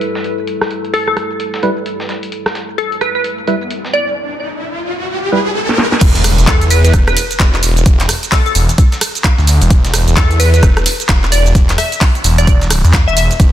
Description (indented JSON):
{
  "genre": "bass house",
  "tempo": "130 BPM",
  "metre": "4/4",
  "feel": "swing 61% on 16ths",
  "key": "E minor",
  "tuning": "A4 = 437 Hz",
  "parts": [
    { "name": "dark analog pad", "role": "sustained chords", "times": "0.0-4.1 s", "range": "G3 to A4", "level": "-23 LUFS", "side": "left 1 dB", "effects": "wide subtle chorus, sidechain pumping" },
    { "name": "breakbeat sampler-style drum kit", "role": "drums", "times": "0.0-13.5 s", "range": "hi-hat, snare drum", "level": "-28 LUFS", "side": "left 1 dB", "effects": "sidechain pumping on hats, high-pass filter on hats, low-pass filter on hats, studio reverb, soft clipping on snare, high-pass filter on snare, low-pass filter on snare" },
    { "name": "garage drum kit", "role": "drums", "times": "0.0-13.5 s", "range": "crash cymbal, handclaps, hi-hat, ride cymbal, rim click, shaker, snare drum", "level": "-17 LUFS", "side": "right 1 dB", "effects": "low-pass filter on hats, studio reverb, low-pass filter on perc, soft clipping on snare, low-pass filter on snare, low-pass filter on cymbals" },
    { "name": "glassy wavetable pluck", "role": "melody", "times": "0.9-13.3 s", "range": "A4 to E5", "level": "-18 LUFS", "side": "equal", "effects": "chorus, digital delay" },
    { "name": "percussive organ stab", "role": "stabs", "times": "1.6-5.4 s", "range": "G3 to B4", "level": "-20 LUFS", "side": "right 2 dB", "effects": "wide subtle chorus, sidechain pumping, digital delay" },
    { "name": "riser and impact", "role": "sound effects", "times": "3.4-7.9 s", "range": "none", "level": "-20 LUFS", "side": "equal", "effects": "none" },
    { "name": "phased detuned saw bass", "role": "bass", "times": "6.0-13.5 s", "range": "E1 to E2", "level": "-12 LUFS", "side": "equal", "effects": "phaser, tube saturation, sidechain pumping" },
    { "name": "electronic kick drum", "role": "drums", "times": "6.0-13.5 s", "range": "none", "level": "-10 LUFS", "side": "equal", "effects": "studio reverb" }
  ],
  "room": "light reverb",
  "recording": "dense, heavily limited modern master",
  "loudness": "-10 LUFS",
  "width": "side -12 dB against mid",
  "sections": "0.0-6.0 A section; 6.0-13.5 B section",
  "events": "filter sweep on synth stab 0.0-6.0; riser 3.4-6.0; drum fill 5.7-6.0; drop 6.0-13.5; impact 6.0-7.9",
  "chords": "0.0 Em; 6.0 N.C.",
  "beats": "0.01 | 0.47 0.94 1.40 1.86 | 2.32 2.78 3.24 3.71 | 4.17 4.63 5.09 5.55 | 6.01 6.47 6.93 7.40 | 7.86 8.32 8.78 9.24 | 9.71 10.17 10.63 11.09 | 11.55 12.01 12.47 12.94 | 13.40"
}